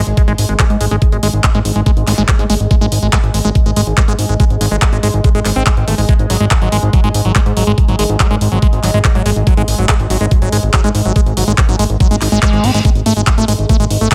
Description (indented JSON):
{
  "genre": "psychedelic trance",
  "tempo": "142 BPM",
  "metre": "4/4",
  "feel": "straight",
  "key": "unclear",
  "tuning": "A4 = 441 Hz",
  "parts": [
    { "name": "bubbling stepped-filter texture", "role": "sustained chords", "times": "0.0-14.1 s", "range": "G#3", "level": "-26 LUFS", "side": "equal", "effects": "chorus, built-in reverb, sidechain pumping" },
    { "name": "fat analog bass", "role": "bass", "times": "0.0-14.1 s", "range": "G#1 to G#2", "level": "-17 LUFS", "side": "equal", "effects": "none" },
    { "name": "drum and bass drum kit", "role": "drums", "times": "0.1-14.1 s", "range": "handclaps, hi-hat", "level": "-22 LUFS", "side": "equal", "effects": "overdrive" },
    { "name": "liquid acid bass", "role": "riff", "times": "0.2-14.1 s", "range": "F#3 to B#3", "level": "-21 LUFS", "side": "equal", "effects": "phaser, sidechain pumping, digital delay" },
    { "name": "electronic kick drum", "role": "drums", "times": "0.2-14.1 s", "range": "none", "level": "-14 LUFS", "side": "equal", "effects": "overdrive" },
    { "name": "zap and reverse cymbal", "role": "sound effects", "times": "2.1-2.2, 12.2-12.8 s", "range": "none", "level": "-28 LUFS", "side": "equal", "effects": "none" }
  ],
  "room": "little or no reverb",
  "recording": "none",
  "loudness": "-13 LUFS",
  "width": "mono",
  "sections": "0.0-14.1 A section",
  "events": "reverse cymbal 12.2-12.8",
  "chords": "none"
}